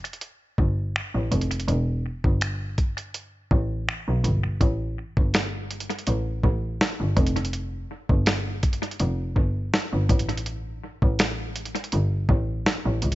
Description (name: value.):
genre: contemporary R&B.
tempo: 82 BPM.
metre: 4/4.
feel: swing 54% on 16ths.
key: unclear.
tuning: A4 = 440 Hz.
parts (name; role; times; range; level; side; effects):
dusty soul sampler-style drum kit; drums; 0.0-13.2 s; finger snaps, hi-hat, kick drum, snare drum; -24 LUFS; equal; vintage 12-bit sampler grit, analog delay.
rich double bass; bass; 0.6-13.2 s; E1 to C#2; -25 LUFS; equal; none.
room: digital ambience.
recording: echo-heavy mix, nothing above 7.7 kHz.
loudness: -22 LUFS.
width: side -16 dB against mid.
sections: 0.0-4.6 A section; 4.6-13.2 B section.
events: none.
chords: none.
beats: 0.22 0.95 | 1.68 2.41 3.15 3.88 | 4.61 5.34 6.07 6.80 | 7.54 8.27 9.00 9.73 | 10.46 11.19 11.93 12.66.